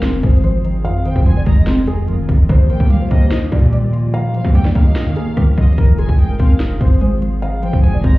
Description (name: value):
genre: hip hop, trap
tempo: 146 BPM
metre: 4/4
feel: half-time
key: F minor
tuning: A4 = 440 Hz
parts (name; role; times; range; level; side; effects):
- felt-muted upright piano; melody; 0.0-8.2 s; Ab4 to F5; -27 LUFS; left 2 dB; tape echo
- glassy wavetable pluck; accompaniment; 0.0-8.2 s; F2 to Eb4; -21 LUFS; equal; chorus
- hollow soft pad; sustained chords; 0.0-8.2 s; Eb3 to Ab4; -26 LUFS; left 1 dB; ensemble chorus
- distorted 808-style bass; bass; 0.0-8.2 s; F1 to Eb3; -16 LUFS; equal; distortion
- trap drum kit; drums; 0.0-8.1 s; hi-hat, kick drum, rim click, snare drum; -13 LUFS; equal; none
- rich studio violin section; second line; 1.1-8.2 s; Eb5 to Bb5; -32 LUFS; equal; tape echo
room: digital ambience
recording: heard muffled through a wall, club reverb, EQ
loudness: -12 LUFS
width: side -19 dB against mid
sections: 0.0-8.2 A section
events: none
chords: 0.0 Fm7; 2.5 Ebadd9; 5.8 Fm7